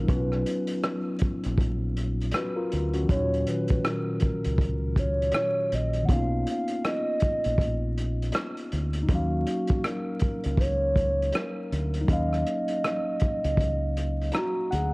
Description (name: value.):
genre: lo-fi hip hop.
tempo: 80 BPM.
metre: 4/4.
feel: swing 61% on 16ths.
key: Eb minor.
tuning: A4 = 440 Hz.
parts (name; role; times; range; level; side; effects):
hollow clarinet-like synth lead; melody; 0.0-14.9 s; Gb4 to Gb5; -30 LUFS; right 1 dB; chorus.
mellow tine electric piano; accompaniment; 0.0-14.9 s; Bb2 to Bb5; -30 LUFS; left 1 dB; none.
deep dub fingered electric bass; bass; 0.0-14.9 s; A#1 to Eb2; -28 LUFS; equal; none.
vintage drum kit; drums; 0.1-14.9 s; hi-hat, kick drum, rim click; -28 LUFS; equal; none.
room: light reverb, small room ambience.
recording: worn, warbling old tape, cassette tape, vinyl crackle, warbly pitch drift.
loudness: -24 LUFS.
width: side -25 dB against mid.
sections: 0.0-14.9 A section.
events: none.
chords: 0.1 Bmaj9#11; 3.1 Ebm9; 6.1 Bmaj9#11; 9.1 Ebm9.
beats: | 0.09 0.84 1.59 2.34 | 3.09 3.84 4.59 5.34 | 6.09 6.84 7.59 8.34 | 9.09 9.84 10.59 11.34 | 12.09 12.84 13.59 14.34.